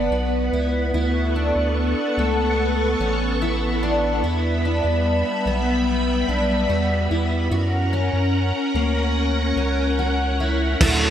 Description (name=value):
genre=dream pop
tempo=73 BPM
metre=4/4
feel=straight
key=unclear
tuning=A4 = 440 Hz
part: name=string machine, violins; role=sustained chords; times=0.0-11.1 s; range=G3 to C#6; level=-23 LUFS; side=equal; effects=ensemble chorus
part: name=fingerpicked twelve-string acoustic guitar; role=arpeggios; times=0.0-11.1 s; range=A3 to F#4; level=-24 LUFS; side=left 1 dB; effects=analog chorus, digital delay
part: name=round analog bass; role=bass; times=0.0-11.1 s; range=A1 to F#2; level=-23 LUFS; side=equal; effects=none
part: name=electric guitar at the edge of break-up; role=accompaniment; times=10.8-11.1 s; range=D3 to F#4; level=-24 LUFS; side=right 5 dB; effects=tremolo, ensemble chorus
part: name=raw garage drum kit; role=drums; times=10.8-11.0 s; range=crash cymbal, kick drum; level=-16 LUFS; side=equal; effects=none
part: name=shimmering bell with halo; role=texture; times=10.8-11.1 s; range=E5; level=-34 LUFS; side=right 4 dB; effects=none
room=moderate lush hall reverb, RT60 2.5 s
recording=bright 1980s-style digital production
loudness=-19 LUFS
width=side -10 dB against mid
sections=0.0-10.8 A section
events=none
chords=0.0 Bm; 0.9 Dmaj7; 4.2 Em7; 7.5 F#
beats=0.12 | 0.94 1.76 2.58 3.41 | 4.23 5.05 5.87 6.69 | 7.51 8.34 9.16 9.98 | 10.80